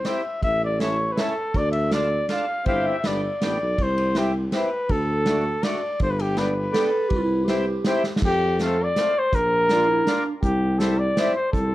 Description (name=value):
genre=alpine folk, alpine dance band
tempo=162 BPM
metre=3/4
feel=straight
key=C major, F major from 8.2 s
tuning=A4 = 440 Hz
part: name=clear flugelhorn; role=melody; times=0.0-11.7 s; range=G4 to F5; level=-24 LUFS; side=left 1 dB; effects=none
part: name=accordion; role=accompaniment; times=0.0-11.3 s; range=G3 to A4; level=-27 LUFS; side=left 1 dB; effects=none
part: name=mellow tuba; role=bass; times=0.0-11.7 s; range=G1 to F2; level=-25 LUFS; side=equal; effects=none
part: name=unplugged drum kit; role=drums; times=0.0-11.6 s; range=crash cymbal, hi-hat, kick drum, ride cymbal, snare drum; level=-27 LUFS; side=equal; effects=none
part: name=dark clarinet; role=second line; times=6.7-10.3 s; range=D4 to A4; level=-25 LUFS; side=right 3 dB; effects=none
room=moderate studio reverb, RT60 0.6 s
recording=worn, warbling old tape, cassette tape, warbly pitch drift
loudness=-20 LUFS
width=side -16 dB against mid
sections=0.0-8.2 A section; 8.2-11.7 B section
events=drum fill 8.0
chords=0.4 A; 1.5 Dm; 2.7 C/G; 3.0 Gadd9; 3.8 C; 4.9 D; 6.0 G; 7.1 C; 8.2 Fadd9; 9.3 Bb; 10.4 C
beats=0.06 | 0.43 0.80 1.17 | 1.54 1.91 2.28 | 2.65 3.03 3.40 | 3.77 4.15 4.52 | 4.89 5.26 5.63 | 6.00 6.37 6.74 | 7.11 7.48 7.85 | 8.22 8.60 8.97 | 9.33 9.70 10.07 | 10.44 10.80 11.17 | 11.54